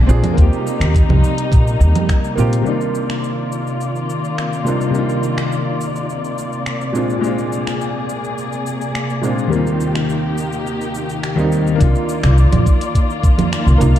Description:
sunset chillout; 105 BPM; 4/4; straight; C minor; A4 = 440 Hz
clear grand piano; accompaniment; 0.0-14.0 s; Eb2 to Ab4; -21 LUFS; left 1 dB; auto-pan, tape echo
dark studio string section; sustained chords; 0.0-14.0 s; C3 to D5; -22 LUFS; left 1 dB
upright bass; bass; 0.0-2.6, 11.8-13.9 s; Bb1 to F2; -12 LUFS; equal
smooth R&B drum kit; drums; 0.1-14.0 s; congas, finger snaps, hi-hat, shaker; -25 LUFS; right 4 dB
electronic kick drum; drums; 0.4-2.2, 11.8-13.4 s; -14 LUFS; equal
moderate lush hall reverb, RT60 1.8 s, studio reverb; dark, warm production; -15 LUFS; side -11 dB against mid
0.0-2.7 A section; 2.7-11.8 B section; 11.8-14.0 A section
0.4 Eb6; 2.7 Cm11; 6.9 Bb9; 9.5 Eb6; 11.8 Cm11

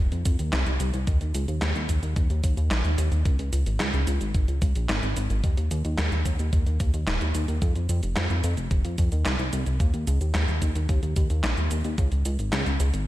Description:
synthwave; 110 BPM; 4/4; straight; A4 = 439 Hz
chorused synth bass; bass; 0.0-13.1 s; Eb1 to F2; -24 LUFS; equal
gated 80s digital drum machine; drums; 0.1-13.0 s; handclaps, hi-hat, shaker, snare drum; -30 LUFS; equal; gated reverb, gated reverb snare
electronic kick drum; drums; 0.3-12.1 s; -24 LUFS; equal
light reverb; -22 LUFS; side -15 dB against mid
0.0-13.1 A section

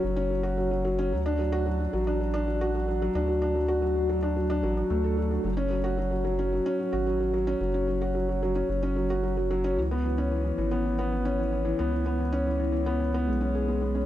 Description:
piano and strings electronica; 111 BPM; 4/4; straight; A4 = 440 Hz
felt-muted upright piano; riff; 0.0-14.1 s; E3 to A4; -26 LUFS; equal; ping-pong delay
round analog bass; bass; 0.0-14.0 s; F#1 to D2; -30 LUFS; equal
moderate huge ambient reverb, RT60 6.8 s; dark, warm production; -25 LUFS; side -12 dB against mid
0.0-14.1 A section
0.0 F#5; 1.1 D; 5.4 F#5; 9.8 C#m7

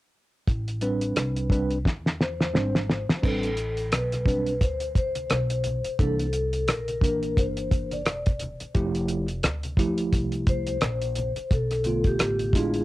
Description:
hip hop, jazz-hop; 87 BPM; 4/4; swing 58% on 16ths; A minor; A4 = 440 Hz
upright bass; bass; 0.5-12.8 s; E1 to E2; -30 LUFS; equal
cloth-damped thuddy drum kit; drums; 0.5-12.8 s; crash cymbal, hi-hat, kick drum, rim click, snare drum; -24 LUFS; equal; cassette tape
mellow tine electric piano; accompaniment; 0.8-12.8 s; D3 to C5; -27 LUFS; right 1 dB; medium stereo tremolo, cassette tape
vibraphone with soft mallets; melody; 2.2-12.8 s; G4 to D5; -29 LUFS; left 2 dB; cassette tape, analog delay
egg shaker and congas; percussion; 3.2-12.8 s; -41 LUFS; left 1 dB
light reverb; home recording on cassette; -23 LUFS; side -17 dB against mid
0.5-3.2 A section; 3.2-12.8 B section
drum fill 1.9-3.2
0.5 Am11; 6.0 C13; 8.8 Fmaj9; 11.5 Bm7b5

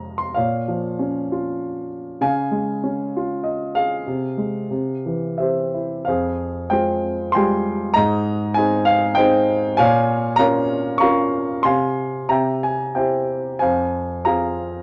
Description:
classical, lyrical solo piano; 86-102 BPM; 3/4; rubato; F minor; A4 = 442 Hz
warm grand piano; solo; 0.0-14.8 s; F2 to Db6; -21 LUFS; equal
light reverb; worn, warbling old tape, cassette tape, warbly pitch drift; -21 LUFS; mono
0.0-6.1 A section; 6.1-14.8 B section
0.4 Bbm; 2.2 Db; 4.1 Fm/C; 4.7 C; 6.1 Fmadd9; 8.0 Ab; 9.8 Bbm; 11.6 Fm/C; 12.3 C; 13.6 Fm

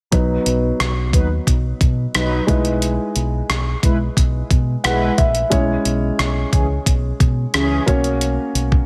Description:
1980s-style pop; 89 BPM; 4/4; straight; B major; A4 = 441 Hz
dark grand piano; accompaniment; 0.1-8.9 s; F#3 to F#5; -24 LUFS; equal
fingered electric bass; bass; 0.1-8.8 s; A#1 to B2; -23 LUFS; equal
clean 12-bit digital drum machine; drums; 0.1-8.9 s; hi-hat, kick drum, rim click; -20 LUFS; equal; gated reverb
mellow synth brass; stabs; 1.1-7.8 s; E3 to B4; -27 LUFS; equal; chorus, tape echo
light reverb; -18 LUFS; mono
0.1-8.9 A section
grand piano fill 4.5-5.5
0.1 B; 2.5 Emaj7/B; 5.5 C#m/B; 7.9 F#/B

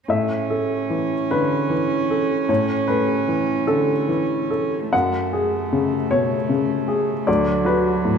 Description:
neoclassical piano and strings; 50 BPM (dotted quarters); 6/8; rubato; A4 = 438 Hz
warm cello; second line; 0.1-8.2 s; F#3 to C#4; -24 LUFS; right 4 dB
clear upright piano; accompaniment; 0.1-8.2 s; D2 to F#5; -20 LUFS; left 2 dB
wet recital hall reverb, RT60 1.4 s; recorded in a church or concert hall; -18 LUFS; side -6 dB against mid
0.1-8.2 A section
0.1 A; 4.9 F#madd9; 7.3 D

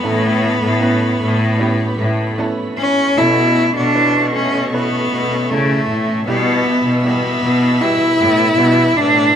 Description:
pop ballad; 78 BPM; 4/4; straight; A4 = 440 Hz
clear cello; melody; 0.0-9.4 s; A3 to E4; -15 LUFS; equal
clear upright piano; accompaniment; 0.0-9.4 s; A2 to C#5; -24 LUFS; right 3 dB
warm studio string section; sustained chords; 0.0-9.4 s; A4 to E6; -27 LUFS; right 1 dB
fingerpicked plugged-in steel-string acoustic guitar; arpeggios; 0.0-9.4 s; B2 to B4; -28 LUFS; left 2 dB
clear chamber cello section; bass; 0.0-9.3 s; A2 to C#3; -18 LUFS; equal
studio reverb; rough home demo mix; -13 LUFS; side -8 dB against mid
0.0-3.2 A section; 3.2-9.4 B section
0.0 Aadd9; 3.2 A/B; 6.3 Em/B

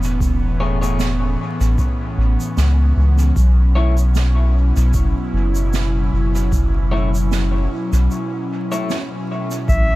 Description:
ambient dub; 76 BPM; 4/4; swing 55% on 16ths; A4 = 440 Hz
airy breathy pad; sustained chords; 0.0-10.0 s; A2 to E4; -23 LUFS; equal; chorus
soft dub sub bass; bass; 0.0-10.0 s; E1 to C#2; -16 LUFS; equal
shaker and snare drum; drums; 0.0-9.9 s; -30 LUFS; right 5 dB; dub echo
electronic kick drum; drums; 0.2-9.9 s; -20 LUFS; equal
electric guitar at the edge of break-up; stabs; 0.6-9.0 s; A3 to C#5; -29 LUFS; left 2 dB; dub echo
warm clarinet; melody; 9.7-10.0 s; E5; -19 LUFS; left 1 dB
small room ambience; vinyl crackle; -15 LUFS; side -18 dB against mid
0.0-9.7 A section
break 8.1-9.7
0.0 Amaj7; 3.4 Bsus4

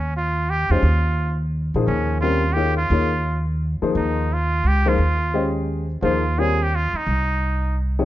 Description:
jazz; 173 BPM; 3/4; swing 62% on 8ths; Eb mixolydian; A4 = 440 Hz
trumpet with straight mute; melody; 0.0-7.8 s; Db4 to Ab4; -24 LUFS; right 2 dB
upright bass; bass; 0.0-8.1 s; C2 to Bb2; -21 LUFS; equal
warm baby grand piano; accompaniment; 0.7-8.1 s; C3 to Eb5; -23 LUFS; left 4 dB
light reverb; dark, warm production, nothing above 7.5 kHz; -18 LUFS; side -14 dB against mid
0.0-8.1 A section
0.0 Eb7sus2; 4.0 Fmadd9

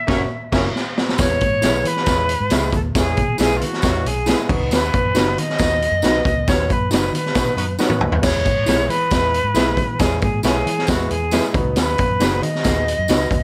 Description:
uptempo 1960s-style soul; 136 BPM; 4/4; straight; E major; A4 = 439 Hz
silver concert flute; melody; 0.0-13.4 s; F4 to E5; -24 LUFS; equal
clear horn section; second line; 0.1-0.6, 7.6-8.2 s; B3 to C#5; -30 LUFS; equal
clear upright piano; accompaniment; 0.1-13.3 s; F#3 to C#5; -28 LUFS; equal
mellow electric guitar; stabs; 0.1-13.2 s; C#4 to E5; -28 LUFS; equal
vintage muted fingered electric bass; bass; 0.1-13.4 s; F#1 to E3; -26 LUFS; equal
raw garage drum kit; drums; 0.1-13.4 s; crash cymbal, hi-hat, kick drum, snare drum, toms; -22 LUFS; equal
tambourine; percussion; 1.2-13.2 s; -35 LUFS; equal
light reverb; -18 LUFS; mono
0.0-1.2 A section; 1.2-13.4 B section
band accent 0.0-1.2, 6.5-8.2; drum fill 0.7-1.2, 7.8-8.2
0.0 F#7; 1.2 E; 4.5 B; 8.2 E; 11.5 B

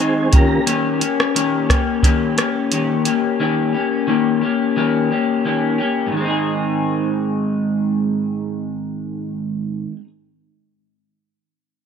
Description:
indie pop, bedroom pop; 88 BPM; 4/4; straight; Ab major; A4 = 440 Hz
electric guitar through a small old amp; accompaniment; 0.0-10.1 s; Ab2 to Ab4; -18 LUFS; left 2 dB; lush chorus, warbly pitch drift
mellow tonewheel organ; accompaniment; 0.0-0.6 s; Eb3 to Bb5; -22 LUFS; right 3 dB; chorus vibrato, fast rotary speaker, cassette tape
soft vintage rhythm box; drums; 0.3-3.2 s; hi-hat, kick drum, rim click; -16 LUFS; right 1 dB
light reverb; -16 LUFS; side -7 dB against mid
0.0-6.1 A section; 6.1-8.9 B section
tonewheel organ fill 0.0-0.7
0.3 Eb7; 6.1 Ab

